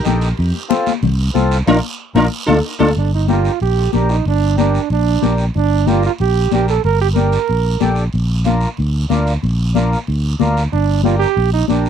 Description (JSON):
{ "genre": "latin, cumbia", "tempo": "186 BPM", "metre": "4/4", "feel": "straight", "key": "G minor", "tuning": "A4 = 440 Hz", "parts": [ { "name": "sitar", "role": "melody", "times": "0.0-2.9 s", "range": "D4 to Bb4", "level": "-20 LUFS", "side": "right 1 dB", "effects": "tape echo" }, { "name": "mellow accordion", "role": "accompaniment", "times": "0.0-11.9 s", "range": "C4 to Bb4", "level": "-20 LUFS", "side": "left 1 dB", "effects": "none" }, { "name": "guiro", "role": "percussion", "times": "0.0-11.9 s", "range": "none", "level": "-31 LUFS", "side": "right 8 dB", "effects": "none" }, { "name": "fingered electric bass", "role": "bass", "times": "0.1-11.9 s", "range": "G1 to F2", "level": "-16 LUFS", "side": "equal", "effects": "none" }, { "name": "congas", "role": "percussion", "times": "0.1-11.8 s", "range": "none", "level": "-20 LUFS", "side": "left 19 dB", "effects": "none" }, { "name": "bright trombone", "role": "second line", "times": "3.0-7.9, 10.7-11.9 s", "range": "D4 to Bb4", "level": "-18 LUFS", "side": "right 15 dB", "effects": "none" } ], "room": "little or no reverb", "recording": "dry, close 1970s-style studio recording", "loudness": "-13 LUFS", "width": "side -8 dB against mid", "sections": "0.0-3.0 A section; 3.0-11.9 B section", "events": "band accent 1.7-3.0; trombone solo 3.0-11.9", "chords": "0.4 F; 1.7 Bb; 2.3 Dm; 3.0 Gm; 8.1 Bb; 10.7 Gm", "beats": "0.06 | 0.38 0.70 1.03 1.35 | 1.67 1.99 2.32 2.64 | 2.96 3.29 3.61 3.93 | 4.25 4.58 4.90 5.22 | 5.55 5.87 6.20 6.52 | 6.84 7.17 7.49 7.81 | 8.13 8.46 8.78 9.10 | 9.43 9.75 10.07 10.39 | 10.72 11.04 11.36 11.69" }